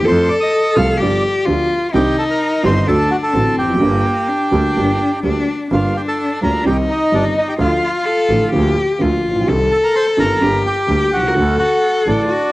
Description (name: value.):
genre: tango.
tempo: 128 BPM.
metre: 4/4.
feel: rubato.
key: G minor.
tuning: A4 = 440 Hz.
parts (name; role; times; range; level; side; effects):
rich cello; second line; 0.0-12.5 s; Bb3 to Bb4; -18 LUFS; left 2 dB; none.
dark upright piano; accompaniment; 0.0-12.3 s; G1 to A4; -19 LUFS; right 2 dB; none.
bright double bass; bass; 0.0-12.3 s; F1 to F2; -21 LUFS; right 1 dB; none.
bandoneon; melody; 0.1-12.5 s; D4 to F6; -19 LUFS; right 1 dB; cassette tape, analog delay.
room: moderate spring reverb, RT60 1.9 s, studio reverb.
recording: home recording on cassette.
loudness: -13 LUFS.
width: side -18 dB against mid.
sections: 0.0-5.7 A section; 5.7-12.5 A section.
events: none.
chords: 0.1 F; 1.0 G7; 1.9 Cmadd9; 2.9 D; 3.8 Gm; 5.7 Gm7; 6.7 Cm; 7.6 Dm; 8.5 Bb/D; 9.5 Cm; 10.4 Gm; 11.4 D.